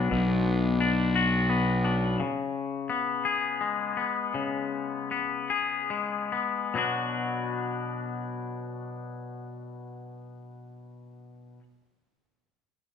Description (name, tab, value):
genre	rock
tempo	46-58 BPM (dotted quarters)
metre	6/8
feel	straight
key	B minor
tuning	A4 = 438 Hz
part	twangy electric guitar	arpeggios	0.0-11.6 s	B2 to G#4	-29 LUFS	left 5 dB	none
part	fuzz fingered electric bass	bass	0.0-2.2 s	B1	-25 LUFS	left 1 dB	overdrive
room	moderate large studio reverb, RT60 1.2 s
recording	band playing live in one room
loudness	-26 LUFS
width	side -7 dB against mid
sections	0.0-6.7 A section; 6.7-12.0 B section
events	slowing down 2.2-6.7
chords	0.0 Bm; 2.2 C#5; 6.7 Bm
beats	| 0.11 1.16 | 2.20 3.25 | 4.34 5.50 | 6.75 8.05 | 9.35 10.66